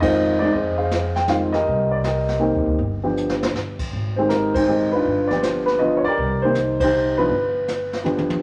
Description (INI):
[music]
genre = jazz piano trio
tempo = 159 BPM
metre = 3/4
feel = swing 66% on 8ths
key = unclear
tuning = A4 = 440 Hz
[part]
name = dark grand piano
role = melody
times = 0.0-8.4 s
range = Eb3 to G5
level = -21 LUFS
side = equal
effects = none
[part]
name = upright bass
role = bass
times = 0.0-8.3 s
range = G1 to F2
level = -29 LUFS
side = equal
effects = none
[part]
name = jazz brush drum kit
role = drums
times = 0.0-8.4 s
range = brushed snare drum, crash cymbal, hi-hat, kick drum, ride cymbal, snare drum, toms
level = -31 LUFS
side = equal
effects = none
[sound]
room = wet large studio reverb, RT60 1.3 s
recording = none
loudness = -21 LUFS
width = mono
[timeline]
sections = 0.0-8.4 A section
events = band accent 0.0, 4.5, 6.7; drum fill 3.2-3.5, 8.1-8.4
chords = 0.0 Fm7; 1.7 Cm7; 2.8 G7; 3.9 Abmaj7; 5.0 G7; 6.2 Cm7; 7.3 G7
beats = 0.15 | 0.53 0.91 1.28 | 1.66 2.04 2.41 | 2.79 3.17 3.54 | 3.92 4.30 4.67 | 5.05 5.43 5.80 | 6.18 6.56 6.93 | 7.31 7.69 8.06